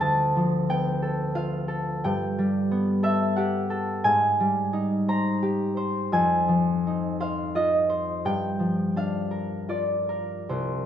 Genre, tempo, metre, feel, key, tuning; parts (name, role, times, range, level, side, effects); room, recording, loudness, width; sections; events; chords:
classical, solo harp piece; 72-92 BPM; 3/4; rubato; A4 = 440 Hz
concert harp; solo; 0.0-10.9 s; C2 to Bb5; -23 LUFS; equal
light reverb; close, detailed microphones; -23 LUFS; side -9 dB against mid
0.0-10.9 A section
0.0 Dm6; 2.0 Gadd9; 4.0 Abmaj7; 6.1 Fm7; 8.3 Gm7